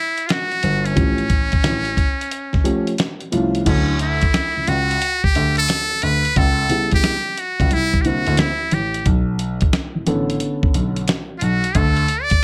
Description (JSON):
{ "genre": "hip hop, jazz-hop", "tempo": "89 BPM", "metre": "4/4", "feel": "swing 66% on 16ths", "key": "D major", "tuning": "A4 = 438 Hz", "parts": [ { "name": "trumpet with metal mute", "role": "melody", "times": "0.0-12.4 s", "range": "C#4 to D5", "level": "-23 LUFS", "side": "equal", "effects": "none" }, { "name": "dusty soul sampler-style drum kit", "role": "drums", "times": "0.2-12.4 s", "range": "crash cymbal, hi-hat, kick drum, snare drum", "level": "-22 LUFS", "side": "equal", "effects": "none" }, { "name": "dark baby grand piano", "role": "bass", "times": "0.6-12.0 s", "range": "G1 to D2", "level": "-23 LUFS", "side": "equal", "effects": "none" }, { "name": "dark upright piano", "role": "accompaniment", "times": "1.0-11.0 s", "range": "C#3 to A4", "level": "-24 LUFS", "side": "equal", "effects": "none" } ], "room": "light reverb", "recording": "none", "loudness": "-19 LUFS", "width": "mono", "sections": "0.0-3.7 A section; 3.7-12.4 B section", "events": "muted trumpet solo 3.7-12.4", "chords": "0.0 Emadd9; 1.0 A7b13; 3.7 Dmaj9; 6.4 C#m7b5; 7.7 C9; 9.1 Bm9; 11.8 D5", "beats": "0.29 | 0.97 1.64 2.32 2.99 | 3.66 4.34 5.01 5.69 | 6.36 7.04 7.71 8.38 | 9.06 9.73 10.41 11.08 | 11.75 12.43" }